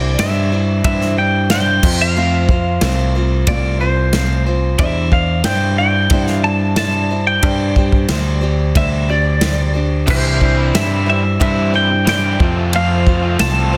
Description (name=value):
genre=folk rock and heartland rock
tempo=91 BPM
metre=4/4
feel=straight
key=C major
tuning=A4 = 440 Hz
part: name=twelve-string electric guitar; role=melody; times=0.0-13.8 s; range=C5 to A5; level=-22 LUFS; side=equal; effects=spring reverb, digital delay
part: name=picked steel-string acoustic guitar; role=accompaniment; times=0.0-13.8 s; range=C3 to C5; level=-25 LUFS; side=equal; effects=none
part: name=picked electric bass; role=bass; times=0.0-13.8 s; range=C2 to G2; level=-19 LUFS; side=equal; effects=none
part: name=natural country drum kit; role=drums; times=0.2-13.6 s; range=crash cymbal, kick drum, ride cymbal, snare drum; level=-21 LUFS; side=equal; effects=none
part: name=raw garage guitar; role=riff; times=10.1-13.8 s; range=F2 to F4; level=-25 LUFS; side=equal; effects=overdrive
room=light reverb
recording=dense, heavily limited modern master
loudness=-15 LUFS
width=mono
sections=0.0-13.8 A section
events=none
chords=0.0 Cadd9; 1.8 F; 4.8 Cadd9/E; 7.4 Gsus4; 10.1 Cadd9; 12.4 F